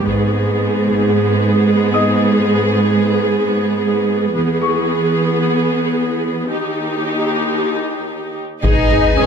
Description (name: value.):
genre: cinematic, hybrid orchestral and electronic film score.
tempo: 112 BPM.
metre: 4/4.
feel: straight.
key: G# harmonic minor.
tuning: A4 = 441 Hz.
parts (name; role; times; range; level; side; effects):
warm studio viola section; accompaniment; 0.0-9.3 s; B3 to G#4; -18 LUFS; equal; none.
rich studio cello section; bass; 0.0-9.3 s; D#2 to D#4; -17 LUFS; right 2 dB; none.
bright baby grand piano; texture; 0.0-9.3 s; D#5 to D#6; -24 LUFS; left 5 dB; digital delay.
taiko ensemble; drums; 0.1-1.1, 4.4-5.4, 8.6-9.1 s; none; -22 LUFS; left 1 dB; none.
warm symphonic violin section; melody; 8.6-9.3 s; G#5; -23 LUFS; left 6 dB; none.
rich symphonic violin section; second line; 8.6-9.3 s; B4; -23 LUFS; left 2 dB; none.
warm French horn section; sustained chords; 8.6-9.3 s; G#4 to D#5; -21 LUFS; left 10 dB; none.
pure sine sub bass; bass; 8.6-9.3 s; G#1; -19 LUFS; left 2 dB; none.
warm chamber double bass section; bass; 8.6-9.3 s; G#1; -23 LUFS; right 2 dB; none.
sub drop; sound effects; 8.6-9.3 s; none; -24 LUFS; right 1 dB; none.
room: light reverb.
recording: close, detailed microphones, high-pass filter.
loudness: -14 LUFS.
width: side -6 dB against mid.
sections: 0.0-8.6 A section.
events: build-up 0.0-8.6; filter sweep 0.0-8.6; impact 8.6-9.3.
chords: 0.1 G#m; 4.4 E; 6.5 D#; 8.6 G#m.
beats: | 0.07 0.60 1.14 1.68 | 2.21 2.75 3.28 3.82 | 4.36 4.89 5.43 5.96 | 6.50 7.03 7.57 8.11 | 8.64 9.18.